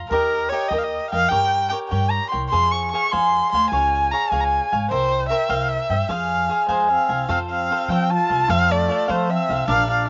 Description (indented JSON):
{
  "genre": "mexican folk, mariachi",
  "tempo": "100 BPM (dotted quarters)",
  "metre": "6/8",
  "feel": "rubato",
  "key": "F minor",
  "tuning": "A4 = 440 Hz",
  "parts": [
    { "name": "cavaquinho", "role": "accompaniment", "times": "0.0-10.1 s", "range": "D4 to C6", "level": "-26 LUFS", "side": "equal", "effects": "slapback echo" },
    { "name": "upright bass", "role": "bass", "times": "0.0-10.1 s", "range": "Ab1 to F3", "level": "-28 LUFS", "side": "equal", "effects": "none" },
    { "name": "dark erhu", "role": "melody", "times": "0.1-10.1 s", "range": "Bb4 to Db6", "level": "-23 LUFS", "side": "equal", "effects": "none" },
    { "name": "mellow trumpet", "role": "second line", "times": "6.7-10.1 s", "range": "Ab3 to F4", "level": "-29 LUFS", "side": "equal", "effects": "slapback echo" }
  ],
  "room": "little or no reverb",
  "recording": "recorded outdoors, with no room sound, nothing above 7.5 kHz",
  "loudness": "-20 LUFS",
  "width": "mono",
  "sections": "0.0-7.3 A section; 7.3-10.1 B section",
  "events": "none",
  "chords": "0.1 Eb; 1.3 Gdim; 2.5 Fm; 3.7 Db; 4.9 C7; 6.1 Fm; 7.3 F"
}